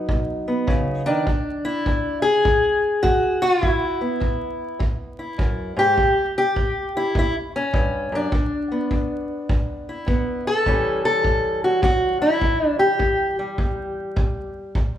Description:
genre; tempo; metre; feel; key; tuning
acoustic country blues, solo or duo; 102 BPM; 4/4; swing 65% on 8ths; unclear; A4 = 440 Hz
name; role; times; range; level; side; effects
fingerpicked steel-string acoustic guitar; melody; 0.0-15.0 s; E2 to A4; -20 LUFS; left 1 dB; none
kick drum; drums; 0.1-14.9 s; none; -24 LUFS; equal; none
room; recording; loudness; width
moderate large studio reverb, RT60 1.2 s; band playing live in one room, vinyl crackle; -19 LUFS; side -11 dB against mid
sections
0.0-1.3 A section; 1.3-15.0 A section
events
none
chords
0.0 B; 1.3 E7; 6.0 A7; 8.3 E5; 10.7 A7

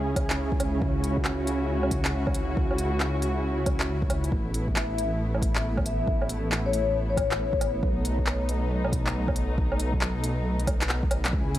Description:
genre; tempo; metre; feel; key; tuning
future garage; 137 BPM; 4/4; swing 64% on 16ths; unclear; A4 = 440 Hz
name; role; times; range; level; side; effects
muted studio string section; sustained chords; 0.0-11.6 s; C#3 to G#4; -31 LUFS; equal; sidechain pumping
dark detuned saw bass; bass; 0.0-11.6 s; A1 to C#2; -28 LUFS; equal; tube saturation
electronic kick drum; drums; 0.2-11.4 s; none; -29 LUFS; equal; overdrive, studio reverb
organic electronic drum kit; drums; 0.2-11.6 s; handclaps, hi-hat, woodblock; -31 LUFS; right 1 dB; overdrive, studio reverb
vibraphone with soft mallets; melody; 4.8-7.7 s; C#5 to E5; -32 LUFS; left 5 dB; vintage 12-bit sampler grit, tape echo
room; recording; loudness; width
light reverb; none; -24 LUFS; side -13 dB against mid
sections
0.0-11.6 A section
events
drum fill 10.9-11.3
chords
0.0 C#m; 4.3 Asus2; 7.8 B7

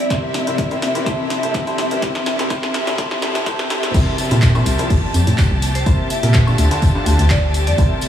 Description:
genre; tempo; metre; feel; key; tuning
piano house; 125 BPM; 4/4; swing 54% on 16ths; C mixolydian; A4 = 439 Hz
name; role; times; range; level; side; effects
marimba with medium hard mallets; melody; 0.0-0.2, 5.8-7.8 s; C5 to E5; -27 LUFS; equal; analog delay
dark symphonic violin section; sustained chords; 0.0-8.1 s; E4 to A5; -26 LUFS; left 1 dB; sidechain pumping
granular cloud pad; texture; 0.0-8.1 s; C4 to C6; -27 LUFS; left 1 dB; built-in reverb, analog chorus, sidechain pumping
clear baby grand piano; riff; 0.1-8.1 s; C3 to E5; -23 LUFS; equal; sidechain pumping, low-pass filter, analog delay
electronic kick drum; drums; 0.1-7.9 s; none; -18 LUFS; equal; none
punchy analog drum machine; drums; 0.1-8.1 s; crash cymbal, handclaps, hi-hat, snare drum, woodblock; -24 LUFS; left 1 dB; high-pass filter on snare, high-pass filter on hats, high-pass filter on cymbals, high-pass filter on perc
organ-like FM bass; bass; 3.9-7.9 s; F1 to Bb2; -15 LUFS; equal; sidechain pumping
unplugged drum kit; drums; 3.9-8.1 s; hi-hat, snare drum; -34 LUFS; right 2 dB; none
tambourine; percussion; 3.9-8.1 s; none; -32 LUFS; left 1 dB; none
room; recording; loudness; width
moderate huge ambient reverb, RT60 5.4 s; dreamy mix soaked in reverb, high-pass filter; -15 LUFS; side -10 dB against mid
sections
0.0-3.9 A section; 3.9-8.1 B section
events
build-up 0.0-3.9; drum fill 0.0-3.9; filter sweep 0.0-3.9; drop 3.9-8.1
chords
0.1 C7; 1.1 Fmaj7; 1.8 C7; 4.9 Fmaj7; 5.6 C7; 6.6 Dm7

